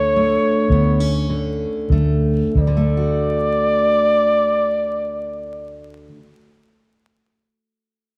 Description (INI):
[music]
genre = acoustic folk-pop ballad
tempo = 30-37 BPM (dotted quarters)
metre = 6/8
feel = straight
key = D major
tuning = A4 = 441 Hz
[part]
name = mellow flugelhorn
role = melody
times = 0.0-5.9 s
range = C#5 to D5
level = -21 LUFS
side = equal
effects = none
[part]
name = fingerpicked steel-string acoustic guitar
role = accompaniment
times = 0.0-6.5 s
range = D2 to F#4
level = -25 LUFS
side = equal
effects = none
[part]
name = vintage muted fingered electric bass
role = bass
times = 0.0-5.9 s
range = D2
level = -21 LUFS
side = equal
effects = none
[sound]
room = moderate large studio reverb, RT60 1.2 s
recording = band playing live in one room, tape saturation, vinyl crackle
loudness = -18 LUFS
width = mono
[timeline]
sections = 0.0-2.6 A section; 2.6-6.6 B section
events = slowing down 0.0-2.6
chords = 0.0 D5; 2.6 D